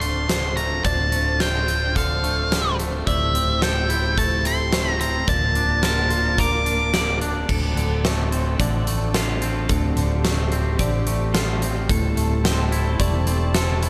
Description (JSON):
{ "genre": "post-rock", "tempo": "109 BPM", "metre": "4/4", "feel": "straight", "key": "D minor", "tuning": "A4 = 440 Hz", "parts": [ { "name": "octave-fuzz lead guitar", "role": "melody", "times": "0.0-7.2 s", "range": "E5 to D6", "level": "-26 LUFS", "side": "equal", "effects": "distortion, tape echo" }, { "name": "dark studio string section", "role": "sustained chords", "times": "0.0-13.9 s", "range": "F3 to A5", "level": "-33 LUFS", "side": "equal", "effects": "none" }, { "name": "twangy electric guitar", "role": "arpeggios", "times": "0.0-13.9 s", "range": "D2 to Bb4", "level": "-31 LUFS", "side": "equal", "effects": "tape echo" }, { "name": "twelve-string electric guitar", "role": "arpeggios", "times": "0.0-13.9 s", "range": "A4 to D5", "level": "-36 LUFS", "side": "equal", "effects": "lush chorus, tape echo" }, { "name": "fingered electric bass", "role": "bass", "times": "0.0-13.9 s", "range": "D1 to A1", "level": "-26 LUFS", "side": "equal", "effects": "none" }, { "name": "huge arena drum kit", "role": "drums", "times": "0.0-13.9 s", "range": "crash cymbal, hi-hat, kick drum, snare drum", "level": "-27 LUFS", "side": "equal", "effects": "none" } ], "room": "light reverb, studio reverb", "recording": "none", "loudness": "-21 LUFS", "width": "mono", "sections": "0.0-7.5 A section; 7.5-13.9 B section", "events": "none", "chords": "0.0 Dm7; 3.1 Am7/D; 5.3 Bbmaj7/D; 7.5 Dm7; 11.9 Am7/D", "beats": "0.29 | 0.85 1.41 1.96 2.51 | 3.07 3.62 4.17 4.73 | 5.28 5.83 6.38 6.94 | 7.49 8.04 8.59 9.14 | 9.69 10.24 10.79 11.35 | 11.90 12.45 13.00 13.55" }